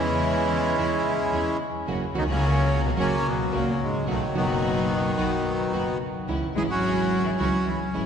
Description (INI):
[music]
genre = tango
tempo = 109 BPM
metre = 4/4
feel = rubato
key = unclear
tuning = A4 = 440 Hz
[part]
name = bandoneon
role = melody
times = 0.0-8.1 s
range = D#3 to G#4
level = -26 LUFS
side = equal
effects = none
[part]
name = warm cello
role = second line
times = 0.0-7.8 s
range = G#2 to G#3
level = -28 LUFS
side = left 1 dB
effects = none
[part]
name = nylon-string guitar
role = accompaniment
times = 0.0-8.1 s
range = B2 to F#4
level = -31 LUFS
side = right 3 dB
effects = none
[part]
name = bright studio string section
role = stabs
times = 0.0-8.1 s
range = G#3 to F#4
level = -36 LUFS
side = left 1 dB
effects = none
[part]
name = clear double bass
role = bass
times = 0.0-8.1 s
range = F#1 to E2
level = -30 LUFS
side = equal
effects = none
[sound]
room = wet cathedral reverb, RT60 4.7 s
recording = recorded in a church or concert hall, nothing above 10.3 kHz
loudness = -22 LUFS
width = side -7 dB against mid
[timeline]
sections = 0.0-8.1 A section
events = none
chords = 0.0 C#m/E; 1.9 F#; 4.1 B; 6.3 C#m